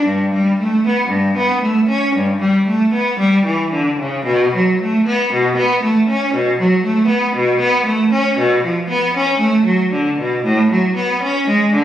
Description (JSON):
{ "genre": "classical, baroque-style suite movement for unaccompanied cello", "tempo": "58 BPM", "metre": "4/4", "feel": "rubato", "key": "unclear", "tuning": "A4 = 440 Hz", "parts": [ { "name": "rich cello", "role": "solo", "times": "0.0-11.8 s", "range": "G2 to C#4", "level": "-13 LUFS", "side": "equal", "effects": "none" } ], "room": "wet stone room reverb, RT60 1.3 s", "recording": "recorded on a phone in the room, studio reverb", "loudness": "-13 LUFS", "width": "side -11 dB against mid", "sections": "0.0-11.8 A section", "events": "none", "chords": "none" }